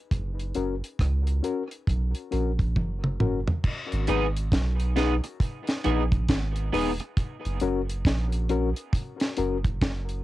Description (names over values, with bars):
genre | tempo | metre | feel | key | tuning
dub reggae | 68 BPM | 4/4 | swing 62% on 16ths | G# minor | A4 = 438 Hz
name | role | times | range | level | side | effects
soft dub sub bass | bass | 0.1-10.2 s | E1 to C#2 | -27 LUFS | right 1 dB | tube saturation
deep reggae drum kit | drums | 0.1-10.2 s | crash cymbal, hi-hat, kick drum, rim click, snare drum, toms | -27 LUFS | right 1 dB | cassette tape
mellow reed electric piano | stabs | 0.6-9.6 s | C#4 to B4 | -31 LUFS | left 6 dB | fast tremolo, cassette tape, dub echo
electric guitar at the edge of break-up | accompaniment | 4.1-7.0 s | B3 to G#4 | -32 LUFS | right 8 dB | analog chorus, cassette tape, dub echo
room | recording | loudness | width
little or no reverb | home recording on cassette | -24 LUFS | side -16 dB against mid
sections
0.0-3.6 A section; 3.6-10.2 B section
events
break 0.0-3.6; drum fill 2.8-3.6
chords
0.1 F#; 3.6 G#m; 7.2 F#